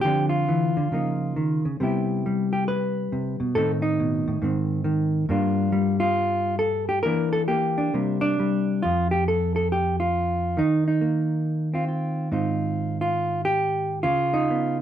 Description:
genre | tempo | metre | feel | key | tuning
solo jazz | 138 BPM | 4/4 | swing 65% on 8ths, rubato | unclear | A4 = 440 Hz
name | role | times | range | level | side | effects
hollow-body jazz guitar | solo | 0.0-14.8 s | F2 to B4 | -21 LUFS | equal | none
room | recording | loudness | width
moderate club reverb, RT60 0.5 s | heard from further back in the room | -21 LUFS | side -10 dB against mid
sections
0.0-8.8 A section; 8.8-14.8 B section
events
none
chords
0.0 Dm7; 0.9 C#69; 1.8 Cmaj7; 3.6 Adim; 4.4 G#; 5.3 Gm7; 7.0 Em7b5; 7.9 Csus2; 8.8 N.C.; 10.6 Ebsus2; 12.3 Ab6; 14.0 Db7

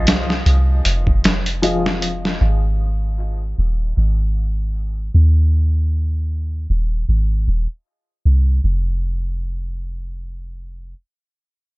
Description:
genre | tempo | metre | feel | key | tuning
trip hop | 77 BPM | 4/4 | swing 56% on 16ths | unclear | A4 = 440 Hz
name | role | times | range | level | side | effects
clear upright piano | accompaniment | 0.0-2.4 s | F3 to Eb5 | -24 LUFS | left 2 dB | tremolo, low-pass filter, tape echo
soft 808-style bass | bass | 0.0-10.9 s | Eb1 to Eb2 | -17 LUFS | equal | none
boom bap sampler-style drum kit | drums | 0.1-2.4 s | hi-hat, kick drum, snare drum | -18 LUFS | equal | none
room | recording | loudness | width
little or no reverb | nothing above 7.7 kHz | -16 LUFS | side -22 dB against mid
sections
0.0-8.6 A section; 8.6-11.8 B section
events
filter sweep on 808-style bass 0.0-8.6; filter sweep on upright piano 0.0-2.4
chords
0.0 Fm7; 2.4 Ab5; 8.6 N.C.

